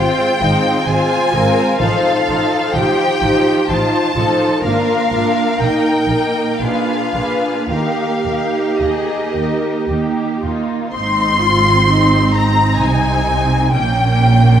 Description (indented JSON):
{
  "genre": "classical, slow romantic movement for string orchestra",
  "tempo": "54-66 BPM",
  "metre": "3/4",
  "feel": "rubato",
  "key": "Eb major, Ab major from 11.0 s",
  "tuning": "A4 = 440 Hz",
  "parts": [
    { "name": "warm symphonic violin section", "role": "melody", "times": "0.0-14.6 s", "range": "Eb5 to C6", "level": "-19 LUFS", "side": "left 2 dB", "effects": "none" },
    { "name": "warm symphonic violin section", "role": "second line", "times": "0.0-14.6 s", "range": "Eb4 to C6", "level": "-20 LUFS", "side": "left 2 dB", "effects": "none" },
    { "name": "warm symphonic viola section", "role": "accompaniment", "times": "0.0-14.6 s", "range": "F3 to F4", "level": "-19 LUFS", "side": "right 2 dB", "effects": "none" },
    { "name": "rich symphonic cello section", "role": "bass", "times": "0.0-14.6 s", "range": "Ab2 to Bb4", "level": "-21 LUFS", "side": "right 2 dB", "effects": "none" },
    { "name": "warm symphonic double bass section", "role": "bass", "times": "0.0-14.6 s", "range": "Ab1 to Eb2", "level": "-19 LUFS", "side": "right 2 dB", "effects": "none" }
  ],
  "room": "wet scoring stage reverb, RT60 2.0 s",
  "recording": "none",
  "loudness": "-13 LUFS",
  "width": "side -9 dB against mid",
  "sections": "0.0-11.0 A section; 11.0-14.6 B section",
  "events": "none",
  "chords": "0.0 Fm/Ab; 1.8 F7/A; 4.6 Bb; 5.6 Eb/Bb; 6.6 Bb7b9; 7.7 Eb; 11.0 Ab; 13.8 Eb7/Bb (rootless)"
}